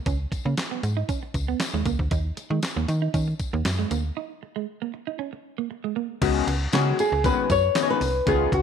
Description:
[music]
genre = early-eighties boogie funk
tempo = 117 BPM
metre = 4/4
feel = straight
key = unclear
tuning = A4 = 444 Hz
[part]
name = semi-hollow electric guitar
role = riff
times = 0.1-6.1 s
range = G#3 to D#4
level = -31 LUFS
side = right 15 dB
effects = wide subtle chorus
[part]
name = slap-like FM bass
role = bass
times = 0.1-8.6 s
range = B#1 to D#3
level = -25 LUFS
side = equal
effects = none
[part]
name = detuned 8-bit digital drum machine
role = drums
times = 0.1-8.6 s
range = crash cymbal, handclaps, hi-hat, kick drum, snare drum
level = -29 LUFS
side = equal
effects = none
[part]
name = tambourine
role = percussion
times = 0.1-8.4 s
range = none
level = -40 LUFS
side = left 13 dB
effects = none
[part]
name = chorused polysynth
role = accompaniment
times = 6.2-8.5 s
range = D#3 to G#4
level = -26 LUFS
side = left 15 dB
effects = none
[part]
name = flamenco guitar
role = melody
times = 6.7-8.6 s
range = F#4 to C#5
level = -22 LUFS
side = left 1 dB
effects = slapback echo
[sound]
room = light reverb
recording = 1960s-style stereo with parts hard left and right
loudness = -22 LUFS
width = side -7 dB against mid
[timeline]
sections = 0.0-6.2 A section; 6.2-8.6 B section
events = break 4.2-6.2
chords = 0.0 C#5; 2.1 D#5; 6.2 C#9sus4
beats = | 0.06 0.58 1.09 1.60 | 2.12 2.63 3.14 3.65 | 4.17 4.68 5.19 5.70 | 6.22 6.73 7.24 7.76 | 8.27

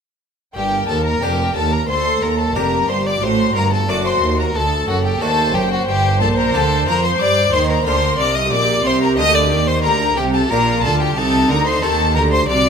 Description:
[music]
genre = classical, baroque-style concerto movement with solo episodes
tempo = 90 BPM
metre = 4/4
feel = straight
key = G minor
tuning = A4 = 440 Hz
[part]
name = clear chamber violin section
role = melody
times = 0.6-12.7 s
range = F#5 to Eb6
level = -22 LUFS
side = left 4 dB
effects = none
[part]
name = rich violin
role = melody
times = 0.6-12.7 s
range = F#4 to Eb5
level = -21 LUFS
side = left 2 dB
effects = none
[part]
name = rich studio violin section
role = second line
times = 0.6-12.7 s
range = F#5 to Eb6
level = -24 LUFS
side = equal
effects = none
[part]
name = harpsichord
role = accompaniment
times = 0.6-12.7 s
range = D2 to A4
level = -25 LUFS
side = left 3 dB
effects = none
[part]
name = rich chamber viola section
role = accompaniment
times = 0.6-12.7 s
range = Eb4 to C5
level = -24 LUFS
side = left 2 dB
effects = none
[part]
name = warm chamber double bass section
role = bass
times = 0.6-12.7 s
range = F1 to G2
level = -22 LUFS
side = right 3 dB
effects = none
[part]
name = warm symphonic cello section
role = bass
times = 0.6-12.7 s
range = D2 to G3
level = -21 LUFS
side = right 3 dB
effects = none
[sound]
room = light reverb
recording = close, detailed microphones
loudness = -14 LUFS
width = side -6 dB against mid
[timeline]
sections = 0.6-12.7 A section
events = none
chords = 0.6 Gm; 3.2 D7; 5.9 Gm; 8.5 Gm/Bb; 11.2 Adim/C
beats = | 0.56 1.23 1.89 2.56 | 3.22 3.89 4.55 5.21 | 5.88 6.54 7.20 7.87 | 8.53 9.19 9.85 10.51 | 11.17 11.83 12.49

